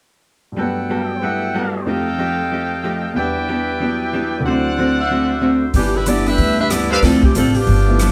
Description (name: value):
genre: jazz, big band swing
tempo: 186 BPM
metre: 4/4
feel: swing 63% on 8ths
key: G major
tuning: A4 = 438 Hz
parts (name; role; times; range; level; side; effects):
- clear grand piano; accompaniment; 0.5-8.0 s; D2 to F#5; -25 LUFS; equal; none
- archtop guitar, miked and amplified; accompaniment; 0.6-8.1 s; G2 to A4; -23 LUFS; equal; none
- bright trumpet section; stabs; 0.6-7.0 s; A4 to G5; -24 LUFS; equal; none
- upright bass; bass; 5.7-8.1 s; G1 to D2; -20 LUFS; equal; none
- swinging big-band drum kit; drums; 5.7-8.1 s; hi-hat, kick drum, rim click, snare drum; -23 LUFS; equal; none
- warm saxophone section; melody; 5.8-8.1 s; E3 to E5; -21 LUFS; equal; none
room: wet studio reverb, RT60 0.5 s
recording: band playing live in one room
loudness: -18 LUFS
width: mono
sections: 0.6-5.7 A section; 5.7-8.1 B section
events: none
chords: 0.6 Gmaj9; 1.9 F9; 3.2 Em7; 4.4 D7; 5.7 G6; 7.0 Dm7